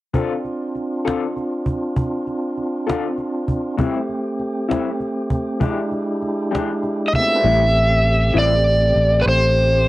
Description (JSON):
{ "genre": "slow blues", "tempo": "66 BPM (dotted quarters)", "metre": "12/8", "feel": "straight", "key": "A minor", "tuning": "A4 = 444 Hz", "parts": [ { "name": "electric guitar through a small old amp", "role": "accompaniment", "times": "0.1-8.5 s", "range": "A2 to A4", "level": "-23 LUFS", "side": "left 5 dB", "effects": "harmonic tremolo, cassette tape" }, { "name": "cajon", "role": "drums", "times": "0.1-7.3 s", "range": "none", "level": "-23 LUFS", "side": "equal", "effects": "cassette tape" }, { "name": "tonewheel organ", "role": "sustained chords", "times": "0.2-9.9 s", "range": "G#3 to D5", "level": "-23 LUFS", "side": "right 1 dB", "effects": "slow rotary speaker, cassette tape" }, { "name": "overdriven slide guitar", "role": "melody", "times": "7.1-9.9 s", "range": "B4 to E5", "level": "-16 LUFS", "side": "equal", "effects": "cassette tape" }, { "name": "fingered electric bass", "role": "bass", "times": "7.4-9.9 s", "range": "A1", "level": "-17 LUFS", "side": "equal", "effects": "none" } ], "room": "light reverb", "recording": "home recording on cassette", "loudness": "-17 LUFS", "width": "side -17 dB against mid", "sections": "0.1-7.4 A section; 7.4-9.9 B section", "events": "none", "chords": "0.1 Dm7; 3.8 Am7; 5.6 E7#9; 7.4 Am7" }